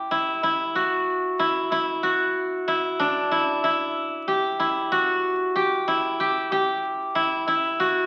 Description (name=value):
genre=progressive instrumental, progressive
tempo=188 BPM (eighths)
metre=11/8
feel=straight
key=unclear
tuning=A4 = 439 Hz
part: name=steel-string zither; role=solo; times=0.0-8.1 s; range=D4 to G4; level=-24 LUFS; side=equal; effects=none
room=wet large studio reverb, RT60 1.2 s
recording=very old 78 rpm record, vinyl crackle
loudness=-24 LUFS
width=mono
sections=0.0-8.1 A section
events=none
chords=0.0 Em